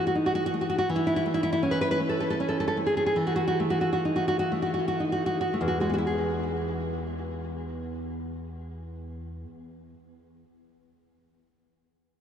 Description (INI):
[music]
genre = romantic piece for solo classical guitar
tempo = 35-57 BPM (dotted quarters)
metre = 6/8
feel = rubato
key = E major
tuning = A4 = 439 Hz
[part]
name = nylon-string guitar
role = solo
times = 0.0-9.9 s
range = E2 to B4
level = -25 LUFS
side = equal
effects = ping-pong delay
[sound]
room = wet huge ambient reverb, RT60 4.6 s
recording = dreamy mix soaked in reverb, cassette tape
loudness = -25 LUFS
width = side -8 dB against mid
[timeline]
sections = 0.0-6.1 A section; 6.1-12.0 B section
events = slowing down 0.0-6.1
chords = 0.0 Esus24; 0.9 A/E; 3.2 Esus24; 6.1 E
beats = | 0.88 1.98 | 3.16 4.51 | 6.09 7.58 | 9.08